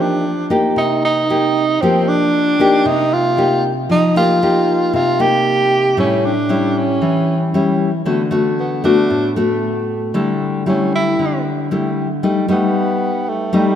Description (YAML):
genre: bossa nova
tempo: 115 BPM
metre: 4/4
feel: straight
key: D major from 8.1 s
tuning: A4 = 440 Hz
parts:
  - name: breathy tenor saxophone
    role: melody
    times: 0.0-13.8 s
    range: G3 to G4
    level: -17 LUFS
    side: right 2 dB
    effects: none
  - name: nylon-string guitar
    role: accompaniment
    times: 0.0-13.8 s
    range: A2 to G4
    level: -16 LUFS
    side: left 2 dB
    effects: none
room: wet lush hall reverb, RT60 2.5 s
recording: rough home demo mix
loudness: -14 LUFS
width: side -9 dB against mid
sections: 0.0-8.1 A section; 8.1-13.8 B section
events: tenor saxophone solo 8.1-13.8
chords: 0.0 F9sus4; 6.0 A7; 8.1 D6; 10.1 A7sus4/D; 12.2 Baug7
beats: 0.24 0.76 1.28 | 1.80 2.33 2.85 3.37 | 3.89 4.41 4.93 5.46 | 5.98 6.50 7.02 7.54 | 8.06 8.58 9.10 9.62 | 10.15 10.67 11.19 11.71 | 12.23 12.75 13.27